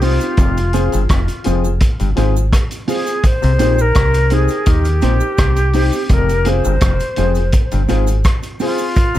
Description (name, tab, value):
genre	roots reggae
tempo	84 BPM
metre	4/4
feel	straight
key	unclear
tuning	A4 = 440 Hz
part	hollow concert flute	melody	0.0-9.2 s	F4 to C5	-20 LUFS	equal	tape echo, plate reverb
part	mellow electric guitar	accompaniment	0.0-8.9 s	C4 to Ab4	-24 LUFS	right 3 dB	spring reverb, tape echo
part	dark upright piano	stabs	0.0-8.8 s	Eb4 to C5	-23 LUFS	left 6 dB	none
part	deep dub fingered electric bass	bass	0.0-9.2 s	F1 to Eb2	-15 LUFS	equal	none
part	vintage drum kit	drums	0.0-9.2 s	hi-hat, kick drum, rim click	-17 LUFS	equal	none
part	cabasa	percussion	0.0-9.2 s	none	-33 LUFS	right 2 dB	none
part	overdriven clav	riff	0.4-9.2 s	F2 to Eb3	-24 LUFS	left 6 dB	none
room	light reverb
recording	none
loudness	-13 LUFS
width	side -13 dB against mid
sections	0.0-9.2 A section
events	none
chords	0.4 Fm; 3.2 Cm; 6.1 Fm